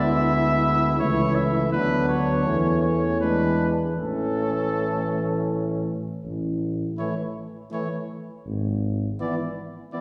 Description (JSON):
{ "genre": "classical, brass quintet", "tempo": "81 BPM", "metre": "3/4", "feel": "straight", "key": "A major", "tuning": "A4 = 440 Hz", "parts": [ { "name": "clear trumpet", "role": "melody", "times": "0.0-10.0 s", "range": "A4 to E5", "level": "-29 LUFS", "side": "equal", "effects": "none" }, { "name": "warm flugelhorn", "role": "second line", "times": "0.0-10.0 s", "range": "C#4 to E4", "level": "-33 LUFS", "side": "equal", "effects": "none" }, { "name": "clear trombone", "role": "accompaniment", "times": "0.0-10.0 s", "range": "E3 to G#3", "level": "-32 LUFS", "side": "equal", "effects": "none" }, { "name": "mellow French horn", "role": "accompaniment", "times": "0.0-10.0 s", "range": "G#3 to B3", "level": "-32 LUFS", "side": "equal", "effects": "none" }, { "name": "mellow tuba", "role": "bass", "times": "0.0-9.1 s", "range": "G#1 to E2", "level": "-28 LUFS", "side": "equal", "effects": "none" } ], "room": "wet recital hall reverb, RT60 1.8 s", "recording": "recorded in a church or concert hall", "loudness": "-24 LUFS", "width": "mono", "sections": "0.0-6.2 A section; 6.2-10.0 B section", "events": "none", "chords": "0.0 E7/D; 1.0 A/C#; 1.7 Bm/D; 2.5 A/E; 3.2 E7; 4.0 A; 6.2 A5; 8.5 E/G#" }